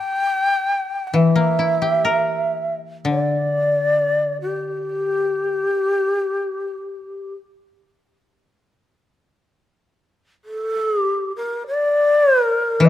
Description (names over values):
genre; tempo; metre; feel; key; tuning
japanese traditional, Japanese chamber music; free time; none; none; G kumoi; A4 = 440 Hz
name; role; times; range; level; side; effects
breathy long shakuhachi; melody; 0.0-7.3, 10.4-12.9 s; G4 to G5; -19 LUFS; left 1 dB; none
koto; accompaniment; 1.1-5.6, 12.8-12.9 s; D3 to Bb4; -19 LUFS; left 3 dB; none
room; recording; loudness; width
light reverb; close, detailed microphones; -18 LUFS; side -12 dB against mid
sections
0.0-9.0 A section; 9.0-12.9 A section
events
none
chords
none